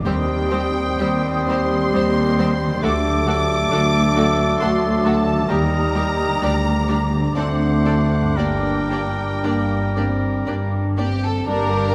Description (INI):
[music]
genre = classical, slow romantic movement for symphony orchestra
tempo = 56-68 BPM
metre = 3/4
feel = rubato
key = G minor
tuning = A4 = 440 Hz
[part]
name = rich studio violin section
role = melody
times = 0.0-11.9 s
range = Bb4 to D6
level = -30 LUFS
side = equal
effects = none
[part]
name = mellow French horn section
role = sustained chords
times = 0.0-11.9 s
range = F#3 to Eb4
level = -29 LUFS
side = equal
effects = none
[part]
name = concert harp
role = arpeggios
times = 0.0-11.9 s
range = G2 to C5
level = -31 LUFS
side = equal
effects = none
[part]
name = rich studio cello section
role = bass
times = 0.0-11.9 s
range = D2 to G2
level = -26 LUFS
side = equal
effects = none
[part]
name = clear oboe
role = second line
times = 0.1-11.9 s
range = A4 to D5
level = -31 LUFS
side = equal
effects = none
[part]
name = dark clarinet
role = second line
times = 0.1-11.9 s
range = D4 to G4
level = -31 LUFS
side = equal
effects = none
[part]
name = flute section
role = second line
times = 0.1-11.9 s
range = G5 to Eb6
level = -33 LUFS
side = equal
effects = none
[part]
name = rich studio violin section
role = second line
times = 0.1-11.9 s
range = F#4 to D5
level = -32 LUFS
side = equal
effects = none
[part]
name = clear bassoon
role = accompaniment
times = 0.1-11.9 s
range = G3 to D4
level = -28 LUFS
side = equal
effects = none
[part]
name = clear studio viola section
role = accompaniment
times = 0.1-11.9 s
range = G3 to G4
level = -30 LUFS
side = equal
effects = none
[part]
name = clear studio double bass section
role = bass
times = 0.1-11.9 s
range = G1 to Eb2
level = -27 LUFS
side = equal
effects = none
[sound]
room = wet scoring stage reverb, RT60 1.5 s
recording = none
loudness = -19 LUFS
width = mono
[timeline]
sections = 0.0-11.5 A section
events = none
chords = 0.1 Cm/Eb; 2.8 D; 5.5 Eb; 6.4 Gm/D; 7.4 D7; 8.4 Gm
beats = | 0.06 0.99 1.94 | 2.83 3.72 4.61 | 5.50 6.42 7.36 | 8.38 9.43 10.47 | 11.46